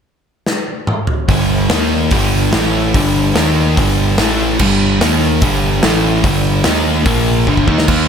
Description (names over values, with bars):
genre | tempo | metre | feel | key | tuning
hard rock | 145 BPM | 4/4 | straight | G minor | A4 = 440 Hz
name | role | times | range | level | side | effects
big rock drum kit | drums | 0.5-8.0 s | crash cymbal, hi-hat, kick drum, snare drum, toms | -17 LUFS | equal | none
crunchy overdriven guitar | riff | 1.3-8.1 s | G2 to Eb4 | -18 LUFS | left 9 dB | none
overdriven semi-hollow guitar | riff | 1.3-8.1 s | G2 to Eb4 | -18 LUFS | right 11 dB | none
sludgy distorted guitar | riff | 1.3-8.1 s | G2 to Eb4 | -19 LUFS | equal | overdrive
growling picked electric bass | bass | 1.3-8.1 s | G1 to Eb2 | -18 LUFS | equal | overdrive
room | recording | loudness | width
light reverb | none | -11 LUFS | side -7 dB against mid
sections
0.0-1.3 A section; 1.3-8.1 B section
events
drum fill 0.5-1.3, 7.5-7.9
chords
0.0 N.C.; 1.3 G5; 1.7 Eb5; 2.1 G5; 2.5 A5; 2.9 G5; 3.4 Eb5; 3.8 G5; 4.2 A5; 4.6 G5; 5.0 Eb5; 5.4 G5; 5.8 A5; 6.2 G5; 6.7 Eb5; 7.1 Bb5; 7.5 Gm